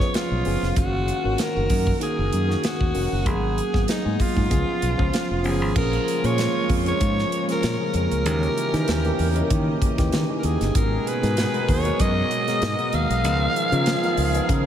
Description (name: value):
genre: polished 1980s jazz-funk pop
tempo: 96 BPM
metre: 4/4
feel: swing 54% on 16ths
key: unclear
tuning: A4 = 440 Hz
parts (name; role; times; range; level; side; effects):
- raspy alto saxophone; melody; 0.0-14.7 s; D#4 to E#5; -26 LUFS; equal; analog delay
- tine electric piano; accompaniment; 0.0-14.7 s; D#3 to B4; -26 LUFS; left 1 dB; wide subtle chorus
- modern studio drum kit; drums; 0.0-14.6 s; crash cymbal, hi-hat, kick drum, snare drum; -26 LUFS; equal; none
- modern bright fingered electric bass; bass; 0.3-14.7 s; E#1 to D#3; -24 LUFS; equal; none
- warm horn section; second line; 5.8-14.7 s; C#3 to G#4; -33 LUFS; right 3 dB; analog delay
- string machine, full ensemble; sustained chords; 5.8-14.7 s; B2 to D#5; -31 LUFS; right 1 dB; ensemble chorus
room: wet cathedral reverb, RT60 5.2 s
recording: dreamy mix soaked in reverb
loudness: -20 LUFS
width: side -10 dB against mid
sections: 0.0-5.8 A section; 5.8-14.7 B section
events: none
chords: 0.0 C#7; 0.8 F#6; 3.3 G#m9; 4.5 C#7; 5.8 A#m7; 8.3 D#7b9; 10.8 G#m9; 13.2 C#13